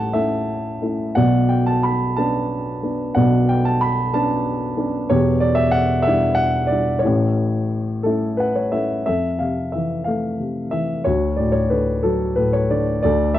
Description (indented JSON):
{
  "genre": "classical, lyrical solo piano",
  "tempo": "61 BPM (dotted quarters)",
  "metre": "6/8",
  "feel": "rubato",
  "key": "unclear",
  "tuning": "A4 = 440 Hz",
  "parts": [
    { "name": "dark baby grand piano", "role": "solo", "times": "0.0-13.4 s", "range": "E1 to B5", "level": "-17 LUFS", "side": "equal", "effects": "none" }
  ],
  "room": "light reverb",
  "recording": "worn, warbling old tape, cassette tape, warbly pitch drift",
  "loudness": "-17 LUFS",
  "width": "side -12 dB against mid",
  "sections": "0.0-9.1 A section; 9.1-13.4 B section",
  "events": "grand piano fill 8.1-9.1",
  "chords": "0.0 A; 1.2 Bmadd9; 5.1 Em7; 7.0 A; 9.1 Fmaj7; 11.1 D",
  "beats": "0.14 | 1.16 2.17 | 3.16 4.13 | 5.10 6.07 | 7.04 8.05 | 9.07 10.07 | 11.06 12.03 | 13.02"
}